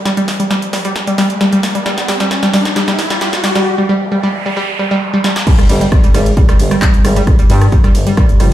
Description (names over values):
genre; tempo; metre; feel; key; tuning
driving peak-time techno; 133 BPM; 4/4; straight; unclear; A4 = 439 Hz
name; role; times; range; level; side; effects
riser and noise sweep; sound effects; 0.0-5.5 s; none; -21 LUFS; left 1 dB; none
analog pluck; riff; 0.1-8.4 s; G3; -15 LUFS; equal; chorus, cassette tape, sidechain pumping, digital delay
techno drum kit; drums; 0.1-8.5 s; crash cymbal, handclaps, hi-hat, ride cymbal, rim click, snare drum; -19 LUFS; equal; high-pass filter on snare, sidechain pumping on hats, high-pass filter on hats, sidechain pumping on cymbals, high-pass filter on cymbals, high-pass filter on room
analog drone; drone; 6.4-8.5 s; G2 to G3; -20 LUFS; equal; chorus, sidechain pumping
electronic kick drum; drums; 5.5-8.3 s; none; -10 LUFS; equal; none
growling FM bass; bass; 5.7-8.5 s; F1 to G2; -13 LUFS; equal; sidechain pumping
room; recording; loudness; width
wet stone room reverb, RT60 1.2 s, digital ambience; played on a big sound system in a bare room, large studio reverb; -10 LUFS; side -12 dB against mid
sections
0.0-5.5 A section; 5.5-8.5 B section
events
build-up 0.0-5.5; drum fill 0.0-3.7, 5.2; riser 0.0-3.7; filter sweep on synth arpeggio sound 0.0-5.5; noise sweep 3.7-5.5; drop 5.5-8.5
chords
0.0 N.C.; 5.5 G5